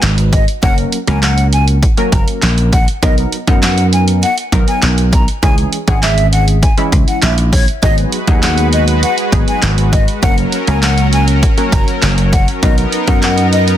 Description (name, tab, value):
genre	dance-pop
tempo	100 BPM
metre	4/4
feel	straight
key	B major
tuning	A4 = 438 Hz
part	funky polysynth comp	accompaniment	0.0-13.8 s	E3 to B4	-20 LUFS	right 1 dB	chorus, sidechain pumping
part	dry thumbed slap bass	bass	0.0-13.8 s	F#1 to F#2	-13 LUFS	equal	sidechain pumping
part	punchy analog drum machine	drums	0.0-13.8 s	handclaps, hi-hat, kick drum, snare drum	-14 LUFS	equal	none
part	breathy mellow jazz flute	melody	0.3-13.6 s	C#5 to A#5	-20 LUFS	left 2 dB	ping-pong delay
part	lush unison pad	sustained chords	7.8-13.8 s	F#3 to B4	-19 LUFS	equal	chorus, sidechain pumping
room	digital ambience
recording	dense, heavily limited modern master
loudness	-10 LUFS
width	side -11 dB against mid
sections	0.0-13.8 A section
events	none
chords	0.0 G#m7; 0.6 F#; 3.0 Bmaj7; 5.4 C#m; 7.8 G#m7; 10.2 F#; 12.6 Bmaj7